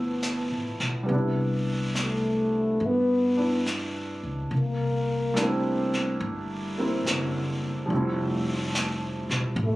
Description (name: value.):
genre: jazz ballad.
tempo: 71 BPM.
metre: 4/4.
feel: swing 67% on 8ths.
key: C major.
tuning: A4 = 440 Hz.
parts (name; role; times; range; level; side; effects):
breathy trombone; melody; 0.0-9.8 s; A3 to C4; -25 LUFS; left 1 dB; none.
warm concert grand piano; accompaniment; 0.0-9.8 s; C3 to E4; -29 LUFS; right 1 dB; none.
upright bass; bass; 0.0-9.8 s; E1 to G2; -30 LUFS; left 1 dB; none.
jazz brush drum kit; drums; 0.2-9.8 s; brushed snare drum, hi-hat, snare drum; -33 LUFS; left 1 dB; none.
room: little or no reverb.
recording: recorded on a phone in the room, club ambience.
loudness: -24 LUFS.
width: side -18 dB against mid.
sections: 0.0-1.1 A section; 1.1-9.8 B section.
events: trombone solo 1.1-9.8.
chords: 0.0 G13; 1.1 Cmaj9; 4.5 C13; 7.9 Fmaj9.